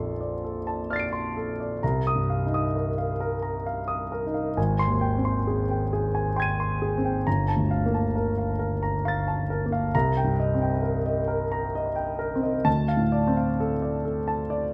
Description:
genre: classical, impressionist solo piano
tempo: 66 BPM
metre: 3/4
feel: rubato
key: unclear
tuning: A4 = 440 Hz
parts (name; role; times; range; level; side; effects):
- warm grand piano; solo; 0.0-14.7 s; G1 to Eb7; -26 LUFS; equal; none
room: moderate recital hall reverb, RT60 1.4 s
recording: close, detailed microphones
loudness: -26 LUFS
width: mono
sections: 0.0-14.7 A section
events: none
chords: 0.0 Bbmaj9; 1.8 Cm7; 4.6 Abmaj7; 7.3 Gm9; 9.9 Cm7; 12.7 Dm7

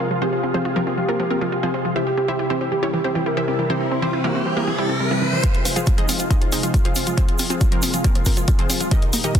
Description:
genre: uplifting trance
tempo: 138 BPM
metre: 4/4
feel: straight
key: F minor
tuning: A4 = 442 Hz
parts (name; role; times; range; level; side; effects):
- wide unison pluck; melody; 0.0-9.4 s; E3 to F5; -25 LUFS; equal; sidechain pumping, digital delay
- warm velvety synth lead; second line; 0.0-5.3 s; G4 to C5; -26 LUFS; equal; chorus, digital delay
- analog string pad; sustained chords; 0.0-9.4 s; Bb2 to F4; -26 LUFS; left 1 dB; ensemble chorus, sidechain pumping
- wide unison pluck; arpeggios; 0.0-9.4 s; Eb3 to F4; -27 LUFS; right 2 dB; cassette tape, sidechain pumping, digital delay
- riser; sound effects; 3.2-5.4 s; none; -27 LUFS; equal; none
- electronic hi-hat; drums; 5.4-9.4 s; none; -26 LUFS; left 3 dB; none
- electronic kick drum; drums; 5.4-9.4 s; none; -18 LUFS; equal; none
- egg shaker; percussion; 5.4-9.4 s; none; -29 LUFS; right 4 dB; none
room: light reverb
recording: dense, heavily limited modern master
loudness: -18 LUFS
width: side -8 dB against mid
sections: 0.0-5.4 A section; 5.4-9.4 B section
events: riser 3.2-5.4; build-up 5.4-9.4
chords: 0.0 Fm; 2.0 C; 5.4 Fm

